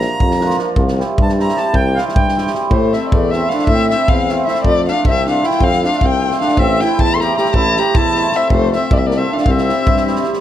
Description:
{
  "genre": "balkan folk, Balkan wedding band",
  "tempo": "310 BPM (eighths)",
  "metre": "5/8",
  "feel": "straight",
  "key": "unclear",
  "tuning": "A4 = 445 Hz",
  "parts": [
    { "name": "accordion", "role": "second line", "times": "0.0-10.2 s", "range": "A3 to Bb5", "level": "-19 LUFS", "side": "equal", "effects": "none" },
    { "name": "cimbalom", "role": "accompaniment", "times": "0.0-10.4 s", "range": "F3 to A4", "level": "-21 LUFS", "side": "right 2 dB", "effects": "none" },
    { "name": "clear tuba", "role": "bass", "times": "0.0-10.2 s", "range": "F1 to A2", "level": "-19 LUFS", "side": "equal", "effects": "none" },
    { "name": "natural country drum kit", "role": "percussion", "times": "0.0-10.4 s", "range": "kick drum, snare drum", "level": "-18 LUFS", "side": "equal", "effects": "none" },
    { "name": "dark violin", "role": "melody", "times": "2.7-10.3 s", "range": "C5 to C6", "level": "-18 LUFS", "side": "left 3 dB", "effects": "none" }
  ],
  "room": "moderate recital hall reverb, RT60 1.6 s",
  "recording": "none",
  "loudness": "-12 LUFS",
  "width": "side -11 dB against mid",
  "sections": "0.0-2.7 A section; 2.7-10.4 B section",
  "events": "accordion solo 0.0-2.7",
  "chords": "0.0 Bb; 0.8 C; 2.7 Am; 4.7 F; 6.6 Am; 8.5 F; 9.5 C"
}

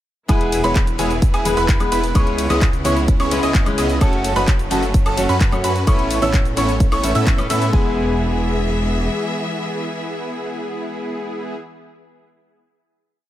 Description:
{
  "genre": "EDM, festival progressive house",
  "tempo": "129 BPM",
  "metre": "4/4",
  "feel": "straight",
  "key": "E major",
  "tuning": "A4 = 440 Hz",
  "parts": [
    { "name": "fingerpicked steel-string acoustic guitar", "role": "accompaniment", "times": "0.3-11.6 s", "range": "G#3 to E5", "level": "-24 LUFS", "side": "left 2 dB", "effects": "sidechain pumping, tape echo" },
    { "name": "rich studio string section", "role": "sustained chords", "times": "0.3-11.6 s", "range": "C#3 to E5", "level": "-28 LUFS", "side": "equal", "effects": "sidechain pumping" },
    { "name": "bright grand piano", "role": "arpeggios", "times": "0.3-11.6 s", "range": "G#5 to E6", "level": "-26 LUFS", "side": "right 1 dB", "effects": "vintage 12-bit sampler grit, sidechain pumping, tape echo" },
    { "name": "supersaw stab", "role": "riff", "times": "0.3-11.6 s", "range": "B3 to E5", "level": "-24 LUFS", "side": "right 1 dB", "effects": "sidechain pumping, tape echo" },
    { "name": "wide detuned saw bass", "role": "bass", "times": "0.3-9.1 s", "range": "E1 to A2", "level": "-23 LUFS", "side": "equal", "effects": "chorus, tube saturation, sidechain pumping" },
    { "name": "electronic kick drum", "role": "drums", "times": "0.3-7.8 s", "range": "none", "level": "-16 LUFS", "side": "equal", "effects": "none" },
    { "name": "house drum kit", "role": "drums", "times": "0.3-7.7 s", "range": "handclaps, hi-hat, ride cymbal, shaker, woodblock", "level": "-27 LUFS", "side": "left 1 dB", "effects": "none" }
  ],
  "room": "light reverb, digital ambience",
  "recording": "none",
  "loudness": "-16 LUFS",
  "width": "side -13 dB against mid",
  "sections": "0.3-7.7 drop; 7.7-11.5 final chord",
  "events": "drop 0.3-7.7",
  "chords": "0.3 E; 2.2 C#m7; 4.0 F#m; 5.9 Aadd9; 7.7 E"
}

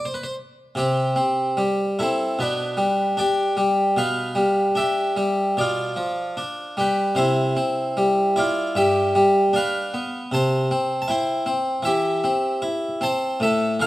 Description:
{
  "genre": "classical, baroque-style suite movement for harpsichord",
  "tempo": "76 BPM",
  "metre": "4/4",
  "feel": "rubato",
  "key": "C major",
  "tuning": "A4 = 443 Hz",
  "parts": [
    { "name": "harpsichord", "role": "solo", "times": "0.0-13.9 s", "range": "G2 to A5", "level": "-19 LUFS", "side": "equal", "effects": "none" }
  ],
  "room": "moderate recital hall reverb, RT60 1.7 s",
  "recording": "close, detailed microphones",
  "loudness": "-19 LUFS",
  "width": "side -16 dB against mid",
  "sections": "0.8-13.9 A section",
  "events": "none",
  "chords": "0.0 C5; 0.8 C; 2.4 G/B; 4.0 G7/B; 7.2 C; 8.8 G7; 10.3 C"
}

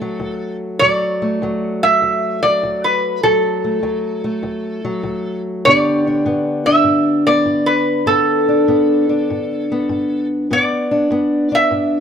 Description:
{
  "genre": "acoustic country blues, solo or duo",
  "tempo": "99 BPM",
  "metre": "4/4",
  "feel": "swing 68% on 8ths",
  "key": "D major",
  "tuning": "A4 = 441 Hz",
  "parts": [
    { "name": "metal-body resonator slide guitar", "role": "melody", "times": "0.0-12.0 s", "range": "A4 to E5", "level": "-16 LUFS", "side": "right 1 dB", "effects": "none" },
    { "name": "fingerpicked steel-string acoustic guitar", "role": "accompaniment", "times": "0.0-12.0 s", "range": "D2 to G4", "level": "-18 LUFS", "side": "left 1 dB", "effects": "none" }
  ],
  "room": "moderate small room ambience, RT60 0.5 s",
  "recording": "none",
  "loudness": "-14 LUFS",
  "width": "side -8 dB against mid",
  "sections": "0.0-12.0 A section",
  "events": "none",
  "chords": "0.0 D; 5.6 G"
}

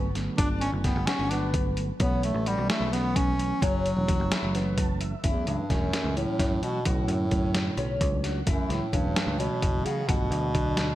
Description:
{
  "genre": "progressive instrumental, band music in an uneven meter",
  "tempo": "260 BPM (eighths)",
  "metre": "7/8",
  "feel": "straight",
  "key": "F# phrygian",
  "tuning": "A4 = 444 Hz",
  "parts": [
    { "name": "mellow tonewheel organ", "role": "accompaniment", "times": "0.0-10.9 s", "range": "D3 to A5", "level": "-33 LUFS", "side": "right 3 dB", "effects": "chorus vibrato" },
    { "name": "picked electric bass", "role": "bass", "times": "0.0-10.9 s", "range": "E1 to F#2", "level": "-30 LUFS", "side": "equal", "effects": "none" },
    { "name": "lo-fi sampler-style drum kit", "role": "drums", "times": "0.2-10.9 s", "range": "hi-hat, kick drum, snare drum", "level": "-28 LUFS", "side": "equal", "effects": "overdrive, gated reverb" },
    { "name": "warm bass clarinet", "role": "melody", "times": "0.4-10.9 s", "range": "E2 to D4", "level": "-30 LUFS", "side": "equal", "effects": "none" },
    { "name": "fingerpicked twelve-string acoustic guitar", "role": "arpeggios", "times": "0.4-10.9 s", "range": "B3 to G4", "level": "-36 LUFS", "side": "left 3 dB", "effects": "wide subtle chorus" }
  ],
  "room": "moderate lush hall reverb, RT60 1.6 s",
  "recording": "bright 1980s-style digital production",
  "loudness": "-24 LUFS",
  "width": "side -14 dB against mid",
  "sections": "0.0-5.2 A section; 5.2-10.9 B section",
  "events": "tonewheel organ fill 4.5-5.2",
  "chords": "0.0 Gmaj7; 2.0 B9sus4; 3.6 F#m7; 6.9 Bm9; 8.5 F#m7; 10.1 Gmaj9"
}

